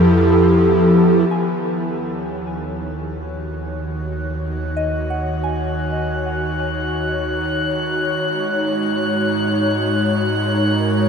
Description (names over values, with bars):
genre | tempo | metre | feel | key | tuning
ambient | free time | none | none | unclear | A4 = 441 Hz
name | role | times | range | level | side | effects
airy breathy pad | sustained chords | 0.0-11.1 s | D#3 to C#5 | -18 LUFS | equal | chorus, shimmer reverb
round analog bass | bass | 0.0-11.1 s | D#2 to G#2 | -25 LUFS | equal | none
bowed-like drone | drone | 0.0-1.4 s | B3 to B4 | -34 LUFS | equal | built-in reverb
soft synth bell | arpeggios | 1.3-8.2 s | D#5 to G#5 | -30 LUFS | left 1 dB | chorus, phaser, analog delay, shimmer reverb
drifting glass-harmonics texture | texture | 3.3-11.1 s | F#6 | -26 LUFS | left 1 dB | chorus, built-in reverb, shimmer reverb
room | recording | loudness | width
wet huge ambient reverb, RT60 7.6 s | dreamy mix soaked in reverb | -17 LUFS | side -6 dB against mid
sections
0.0-1.3 A section; 1.3-11.1 B section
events
fade-in on analog synth pad 1.3-11.1; fade-in on synth bell 1.3-11.1; fade-in on analog synth bass 1.3-11.1; fade-in on synth texture 1.3-11.1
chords
0.0 Fmaj7; 1.3 D#m7; 8.2 G#7sus4